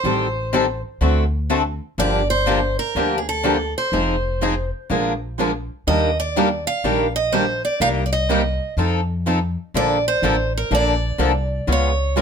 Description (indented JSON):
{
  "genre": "acoustic string swing (jazz manouche)",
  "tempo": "124 BPM",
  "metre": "4/4",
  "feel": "swing 64% on 8ths",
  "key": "Bb major",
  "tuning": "A4 = 438 Hz",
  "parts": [
    { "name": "picked steel-string acoustic guitar", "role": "melody", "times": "0.0-12.2 s", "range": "Ab4 to F5", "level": "-22 LUFS", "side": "right 2 dB", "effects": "plate reverb" },
    { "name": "picked steel-string acoustic guitar", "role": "accompaniment", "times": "0.0-12.2 s", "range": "C3 to Bb4", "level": "-24 LUFS", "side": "right 6 dB", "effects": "none" },
    { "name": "picked swing-style acoustic guitar", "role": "accompaniment", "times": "0.0-12.2 s", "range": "C3 to A4", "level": "-22 LUFS", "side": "left 6 dB", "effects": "none" },
    { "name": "upright bass", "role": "bass", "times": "0.0-12.2 s", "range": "F1 to F2", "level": "-23 LUFS", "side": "equal", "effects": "none" }
  ],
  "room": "light reverb",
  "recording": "close, detailed microphones",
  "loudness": "-18 LUFS",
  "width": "side -6 dB against mid",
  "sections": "0.0-12.2 A section",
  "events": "none",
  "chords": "0.0 Am7b5; 1.0 D7; 2.0 Gm7; 3.9 Fm7; 4.9 Bb7; 5.9 Ebmaj7; 7.8 Cm7; 8.8 F7; 9.7 Bbmaj7; 11.7 Db7"
}